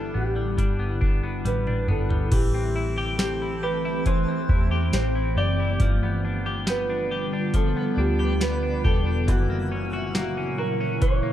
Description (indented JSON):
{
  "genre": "dream pop",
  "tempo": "69 BPM",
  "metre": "4/4",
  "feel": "straight",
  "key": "A dorian",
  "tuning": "A4 = 440 Hz",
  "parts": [
    { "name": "mellow electric guitar", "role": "melody", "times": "0.0-11.3 s", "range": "F#4 to D5", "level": "-29 LUFS", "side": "equal", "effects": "tape echo" },
    { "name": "ethereal airy pad", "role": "sustained chords", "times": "0.0-11.3 s", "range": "A#2 to G4", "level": "-29 LUFS", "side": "equal", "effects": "ensemble chorus, built-in reverb" },
    { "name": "clean electric guitar", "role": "arpeggios", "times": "0.0-11.3 s", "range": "E3 to G4", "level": "-31 LUFS", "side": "left 2 dB", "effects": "analog chorus, tape echo" },
    { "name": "vintage muted picked electric bass", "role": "bass", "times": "0.0-11.3 s", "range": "E1 to E2", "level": "-26 LUFS", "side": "equal", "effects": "none" },
    { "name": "booming analog drum machine", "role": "drums", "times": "0.6-11.2 s", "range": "crash cymbal, hi-hat, kick drum, snare drum, tambourine, toms", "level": "-23 LUFS", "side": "equal", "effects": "overdrive" },
    { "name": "twinkling granular texture", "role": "texture", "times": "3.2-9.7 s", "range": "A4 to E5", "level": "-43 LUFS", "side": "right 2 dB", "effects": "built-in reverb, tape echo" }
  ],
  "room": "light reverb, digital ambience",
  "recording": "dark, warm production",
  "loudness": "-22 LUFS",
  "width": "side -12 dB against mid",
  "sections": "0.0-2.3 A section; 2.3-11.3 B section",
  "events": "drum fill 1.5-2.3",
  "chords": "0.0 G; 2.3 Am7; 5.8 G7; 9.3 F#7"
}